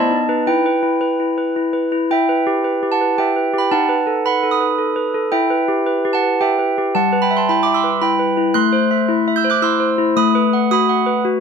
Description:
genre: classical, lullaby for handbells.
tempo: 111 BPM.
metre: 3/4.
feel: straight.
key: E minor.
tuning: A4 = 440 Hz.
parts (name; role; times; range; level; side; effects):
handbells; solo; 0.0-11.4 s; G3 to G6; -14 LUFS; equal; none.
room: moderate booth ambience, RT60 0.2 s.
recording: close, detailed microphones.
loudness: -14 LUFS.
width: side -6 dB against mid.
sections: 0.0-2.1 A section; 2.1-11.4 A section.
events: none.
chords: 0.5 Em; 3.7 B7/D#; 5.3 Em; 7.0 Em/G; 8.6 F#m7b5/A; 10.2 B7/A.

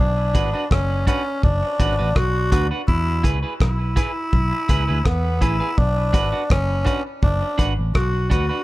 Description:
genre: roots reggae.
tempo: 83 BPM.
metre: 4/4.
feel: straight.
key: B dorian.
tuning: A4 = 440 Hz.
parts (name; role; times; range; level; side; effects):
growling tenor saxophone; melody; 0.0-8.6 s; B3 to F#4; -24 LUFS; left 1 dB; tape echo.
vintage muted fingered electric bass; bass; 0.0-8.5 s; F#1 to E2; -22 LUFS; equal; none.
electric guitar at the edge of break-up; accompaniment; 0.3-8.6 s; D4 to B4; -28 LUFS; right 4 dB; tape echo.
cloth-damped thuddy drum kit; drums; 0.3-8.5 s; hi-hat, kick drum, rim click; -19 LUFS; equal; none.
room: little or no reverb.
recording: none.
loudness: -18 LUFS.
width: side -18 dB against mid.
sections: 0.0-8.6 A section.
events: none.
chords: 0.0 Bm; 2.9 E; 5.8 Bm.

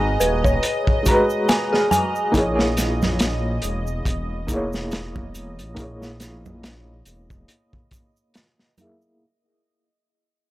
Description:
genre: trip hop.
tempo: 70 BPM.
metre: 4/4.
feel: swing 57% on 16ths.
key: unclear.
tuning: A4 = 440 Hz.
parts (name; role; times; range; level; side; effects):
felt-muted upright piano; accompaniment; 0.0-9.2 s; G#3 to A#5; -24 LUFS; equal; tremolo, low-pass filter, tape echo.
dark detuned synth bell; arpeggios; 0.0-2.4 s; G#4 to G#5; -23 LUFS; equal; chorus, tape echo.
dark detuned saw bass; bass; 0.0-7.4 s; D#1 to A#1; -27 LUFS; equal; transformer saturation.
bowed-like drone; texture; 0.0-9.2 s; D#5; -30 LUFS; right 2 dB; built-in reverb.
crunchy breakbeat drum kit; drums; 0.2-9.0 s; hi-hat, kick drum, snare drum; -23 LUFS; equal; none.
tube shaker and congas; percussion; 0.2-9.2 s; none; -28 LUFS; right 3 dB; none.
room: small room ambience.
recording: dry, gritty hardware recording, transformer saturation.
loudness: -18 LUFS.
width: side -16 dB against mid.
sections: 0.0-9.2 A section.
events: fade-out 0.0-9.2.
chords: 0.0 G#m9; 2.3 A#m7b5.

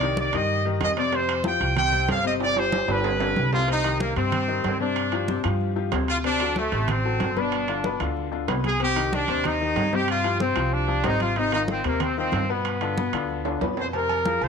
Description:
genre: latin, salsa.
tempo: 188 BPM.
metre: 4/4.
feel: straight.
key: C minor.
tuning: A4 = 437 Hz.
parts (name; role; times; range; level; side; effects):
bright trumpet section; melody; 0.0-14.5 s; A3 to G5; -25 LUFS; right 1 dB; slapback echo.
bright upright piano; accompaniment; 0.0-14.5 s; B2 to C5; -28 LUFS; left 11 dB; none.
upright bass; bass; 0.0-14.5 s; G1 to G2; -28 LUFS; right 2 dB; none.
congas; percussion; 0.0-14.5 s; none; -32 LUFS; right 1 dB; none.
timbales and agogo bells; percussion; 0.0-14.5 s; none; -32 LUFS; right 15 dB; none.
room: light reverb.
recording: 1960s-style stereo with parts hard left and right, tape saturation.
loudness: -21 LUFS.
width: side -6 dB against mid.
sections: 0.0-3.7 A section; 3.7-13.9 B section.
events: drum fill 2.4-3.7, 13.5-13.9.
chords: 0.0 Cm; 1.1 Fsus2; 2.4 Gsus4; 3.7 Cm; 5.0 G7sus4; 6.2 D7; 7.5 G7; 8.8 Cm; 10.1 G7sus4; 11.4 Ab6; 12.7 G7; 13.9 Fm.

